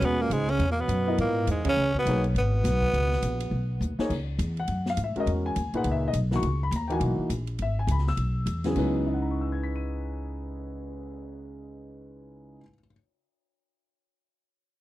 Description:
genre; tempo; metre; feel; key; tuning
modal jazz; 206 BPM; 4/4; swing 61% on 8ths; C# dorian; A4 = 440 Hz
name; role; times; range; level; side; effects
growling tenor saxophone; melody; 0.0-3.8 s; G#3 to C#4; -28 LUFS; equal; tape echo
mellow trombone; second line; 0.0-3.8 s; G#2 to C#3; -32 LUFS; right 6 dB; none
warm concert grand piano; accompaniment; 0.0-12.9 s; A#2 to D#7; -30 LUFS; left 1 dB; none
upright bass; bass; 0.0-12.6 s; G#1 to G#2; -28 LUFS; equal; none
open jazz drum kit; drums; 0.0-11.0 s; crash cymbal, cymbal swell, hi-hat, kick drum, ride cymbal, snare drum; -38 LUFS; left 1 dB; none
room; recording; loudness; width
little or no reverb; dry, close 1970s-style studio recording; -24 LUFS; side -16 dB against mid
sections
0.0-4.1 A section; 4.1-8.8 B section; 8.8-11.1 C section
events
band accent 1.6; drum fill 3.8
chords
0.0 C#m9

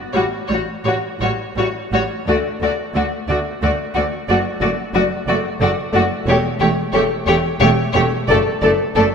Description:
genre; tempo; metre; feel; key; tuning
classical, slow romantic movement for string orchestra; 84-92 BPM; 3/4; rubato; D major; A4 = 440 Hz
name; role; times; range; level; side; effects
rich chamber violin section; melody; 0.1-9.0 s; C#5 to D5; -23 LUFS; left 3 dB; none
rich chamber viola section; accompaniment; 0.1-9.0 s; G3 to A3; -22 LUFS; equal; none
bright studio double bass section; bass; 0.1-9.0 s; E1 to D2; -24 LUFS; right 3 dB; none
warm symphonic cello section; bass; 0.1-9.0 s; D2 to A2; -25 LUFS; right 2 dB; none
warm studio violin section; second line; 0.2-9.0 s; F#4 to A4; -20 LUFS; left 2 dB; none
room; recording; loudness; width
wet concert hall reverb, RT60 2.3 s; minimal, uncompressed stereo recording; -16 LUFS; side -6 dB against mid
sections
0.0-9.1 A section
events
none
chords
0.1 A5; 2.3 D; 4.3 D/F#; 6.3 A7/E; 8.3 D/F# (rootless)

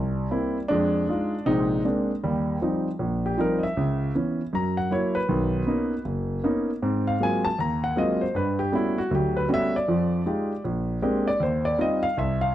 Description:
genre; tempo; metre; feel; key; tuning
solo jazz; 157 BPM; 4/4; swing 64% on 8ths; unclear; A4 = 440 Hz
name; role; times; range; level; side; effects
warm concert grand piano; solo; 0.0-12.5 s; F#1 to Bb5; -22 LUFS; equal; none
room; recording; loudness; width
small room ambience; dry, close 1970s-style studio recording; -22 LUFS; side -12 dB against mid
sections
0.0-2.2 A section; 2.2-12.5 B section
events
grand piano solo 2.2-12.5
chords
0.0 C7; 0.7 Fm7; 1.5 Bb9; 2.2 Eb69; 3.8 Dbm7; 4.5 Gb7; 5.3 Bmaj9; 6.8 Ab13; 8.3 Gmaj9#11; 9.9 Fm9; 10.6 Bb13; 11.4 Eb69

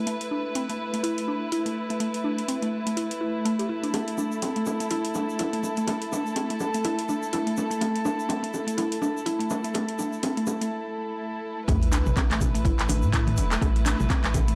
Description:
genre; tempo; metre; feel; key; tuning
afro house; 124 BPM; 4/4; swing 57% on 16ths; unclear; A4 = 441 Hz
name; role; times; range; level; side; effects
warm chamber string section; sustained chords; 0.0-14.6 s; A3 to B4; -33 LUFS; equal; sidechain pumping
mallet-like synth pluck; arpeggios; 0.0-14.6 s; A3 to G4; -32 LUFS; equal; chorus, sidechain pumping, analog delay
afro-pop drum kit; drums; 0.1-14.6 s; handclaps, hi-hat, toms; -34 LUFS; equal; small room reverb
bongos; percussion; 3.9-14.5 s; none; -36 LUFS; equal; none
egg shaker; percussion; 3.9-14.6 s; none; -45 LUFS; equal; none
warm sub bass; bass; 11.7-14.6 s; E1 to A2; -28 LUFS; equal; sidechain pumping
electronic kick drum; drums; 11.7-14.5 s; none; -27 LUFS; equal; overdrive, small room reverb
congas; percussion; 11.7-14.5 s; none; -37 LUFS; equal; none
sub drop; sound effects; 11.7-13.6 s; none; -34 LUFS; equal; none
room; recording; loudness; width
light reverb, small room ambience; dry, gritty hardware recording, cassette tape; -27 LUFS; mono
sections
0.0-11.7 A section; 11.7-14.6 B section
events
filter sweep on synth pluck 0.0-11.7; break 10.7-11.7; drop 11.7-14.6; impact 11.7-13.6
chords
0.0 Asus2

